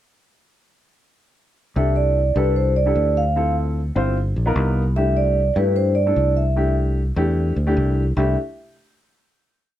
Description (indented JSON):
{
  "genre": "jazz",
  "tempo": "150 BPM",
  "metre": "4/4",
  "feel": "straight",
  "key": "C major",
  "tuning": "A4 = 439 Hz",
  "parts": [
    { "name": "vibraphone with soft mallets", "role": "melody", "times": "1.8-8.4 s", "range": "B4 to F5", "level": "-21 LUFS", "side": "right 2 dB", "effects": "none" },
    { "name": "warm baby grand piano", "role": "accompaniment", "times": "1.8-8.4 s", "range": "A3 to C5", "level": "-24 LUFS", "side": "left 1 dB", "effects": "none" },
    { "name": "fingered electric bass", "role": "bass", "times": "1.8-8.4 s", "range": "G1 to G2", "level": "-20 LUFS", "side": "equal", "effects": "none" }
  ],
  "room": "little or no reverb",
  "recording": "none",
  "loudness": "-17 LUFS",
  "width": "side -12 dB against mid",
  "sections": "1.8-8.2 A section; 8.2-9.8 final chord",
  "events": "none",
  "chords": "1.8 C69; 3.4 Dm7; 4.2 G7alt; 5.0 C69"
}